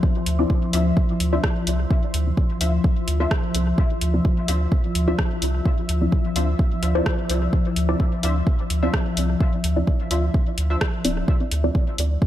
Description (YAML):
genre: dub techno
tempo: 128 BPM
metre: 4/4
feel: swing 53% on 16ths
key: D minor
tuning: A4 = 440 Hz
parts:
  - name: deep dark ambient pad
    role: sustained chords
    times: 0.0-12.3 s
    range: F3 to E6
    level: -26 LUFS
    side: left 2 dB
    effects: chorus, built-in reverb, sidechain pumping
  - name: filtered dub chord stab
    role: stabs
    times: 0.0-12.3 s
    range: C4 to D5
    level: -28 LUFS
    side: equal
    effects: phaser, sidechain pumping, dub echo
  - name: electronic kick drum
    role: drums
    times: 0.0-12.3 s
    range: none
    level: -21 LUFS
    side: equal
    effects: none
  - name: soft dub sub bass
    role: bass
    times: 0.3-12.2 s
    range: D1 to D2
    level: -22 LUFS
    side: equal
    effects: sidechain pumping
  - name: deep house drum kit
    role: drums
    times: 0.3-12.1 s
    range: hi-hat, rim click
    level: -29 LUFS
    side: equal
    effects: dub echo
  - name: filtered dub chord stab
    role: riff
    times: 0.7-10.8 s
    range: D4 to E5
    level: -33 LUFS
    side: left 2 dB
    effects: ensemble chorus, sidechain pumping, dub echo
room: light reverb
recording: none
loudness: -19 LUFS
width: side -12 dB against mid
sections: 0.0-11.3 A section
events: filter sweep on synth stab 0.0-11.3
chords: 0.0 Dm9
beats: | 0.03 0.50 0.97 1.44 | 1.91 2.37 2.84 3.31 | 3.78 4.25 4.72 5.19 | 5.66 6.12 6.59 7.06 | 7.53 8.00 8.47 8.94 | 9.40 9.87 10.34 10.81 | 11.28 11.75 12.22